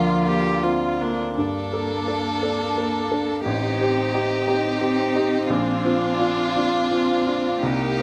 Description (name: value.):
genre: neoclassical piano and strings.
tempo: 57 BPM (dotted quarters).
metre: 6/8.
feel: uneven beats, rubato.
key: unclear.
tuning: A4 = 440 Hz.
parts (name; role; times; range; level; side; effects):
rich chamber violin section; melody; 0.0-8.0 s; F4 to A4; -29 LUFS; equal; none.
warm cello; second line; 0.0-8.0 s; F3 to C4; -30 LUFS; equal; none.
clear baby grand piano; accompaniment; 0.0-8.0 s; A1 to Bb4; -26 LUFS; equal; none.
clear viola; accompaniment; 0.0-8.0 s; D4 to G4; -31 LUFS; equal; none.
pedal harmonium; sustained chords; 0.0-8.0 s; Bb3 to Eb5; -33 LUFS; equal; none.
room: light reverb.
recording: close, detailed microphones.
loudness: -22 LUFS.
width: mono.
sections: 0.0-1.4 A section; 1.4-8.0 B section.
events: none.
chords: 0.0 Bb/D; 1.4 Gmadd9; 3.4 Am7b5; 5.5 Bbadd9.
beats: 0.26 | 1.36 2.42 | 3.44 4.47 | 5.50 6.55 | 7.63.